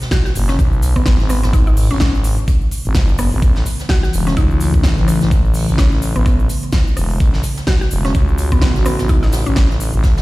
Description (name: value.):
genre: bass house.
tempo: 127 BPM.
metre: 4/4.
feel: swing 57% on 16ths.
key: unclear.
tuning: A4 = 443 Hz.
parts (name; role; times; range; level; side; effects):
sweeping resonant pad; sustained chords; 0.0-10.2 s; B2 to F#4; -24 LUFS; left 1 dB; chorus, sidechain pumping.
big-room dance drum kit; drums; 0.0-10.1 s; hi-hat, rim click, snare drum; -25 LUFS; equal; small room ambience.
jazz brush drum kit; drums; 0.0-10.2 s; hi-hat, snare drum; -32 LUFS; right 1 dB; high-pass filter on hats, small room ambience, high-pass filter on snare, high-pass filter on room.
cabasa; percussion; 0.0-10.2 s; none; -35 LUFS; left 5 dB; none.
mallet-like synth pluck; melody; 0.1-9.7 s; B3 to F#4; -24 LUFS; equal; chorus, digital delay.
electronic kick drum; drums; 0.1-10.1 s; none; -14 LUFS; equal; small room ambience.
growling FM bass; bass; 0.4-10.2 s; E1 to C#2; -16 LUFS; equal; overdrive, sidechain pumping.
room: small room ambience.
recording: played on a big sound system in a bare room, stone room reverb.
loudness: -13 LUFS.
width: side -19 dB against mid.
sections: 0.0-10.2 A section.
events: none.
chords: 0.0 G#m7; 3.4 A.